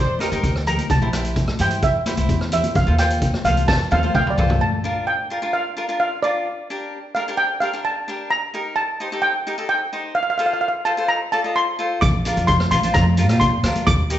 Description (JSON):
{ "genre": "calypso", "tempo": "130 BPM", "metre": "4/4", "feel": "straight", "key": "Bb major", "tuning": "A4 = 440 Hz", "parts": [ { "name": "mellow horn section", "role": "second line", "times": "0.0-0.6 s", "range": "Bb4 to C5", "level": "-27 LUFS", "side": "equal", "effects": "none" }, { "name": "cavaquinho", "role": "accompaniment", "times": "0.2-14.2 s", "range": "D4 to Eb5", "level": "-25 LUFS", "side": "left 1 dB", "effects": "none" }, { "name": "street-band drum kit", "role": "drums", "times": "0.2-4.6, 12.0-14.2 s", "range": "hi-hat, kick drum, rim click, snare drum, toms", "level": "-22 LUFS", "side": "equal", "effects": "none" }, { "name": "congas", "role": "percussion", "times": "0.2-4.6, 12.0-14.0 s", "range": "none", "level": "-28 LUFS", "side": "left 2 dB", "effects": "none" }, { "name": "upright bass", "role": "bass", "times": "0.3-4.6, 12.0-14.1 s", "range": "Bb1 to Bb2", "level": "-21 LUFS", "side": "equal", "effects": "none" }, { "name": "steel pan", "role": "melody", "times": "0.7-14.2 s", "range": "D5 to D6", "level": "-21 LUFS", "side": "right 1 dB", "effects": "none" } ], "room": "moderate recital hall reverb, RT60 1.4 s", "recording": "recorded in a church or concert hall, nothing above 8.0 kHz", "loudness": "-18 LUFS", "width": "side -12 dB against mid", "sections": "0.0-4.6 A section; 4.6-14.2 B section", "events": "steel pan solo 0.0-4.6; drum fill 3.7-4.6", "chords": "0.0 Ebmaj7; 0.9 C7; 2.8 F7; 4.6 Bbmaj7; 6.5 Gmadd9; 8.3 Eb; 10.2 F; 12.0 Bb" }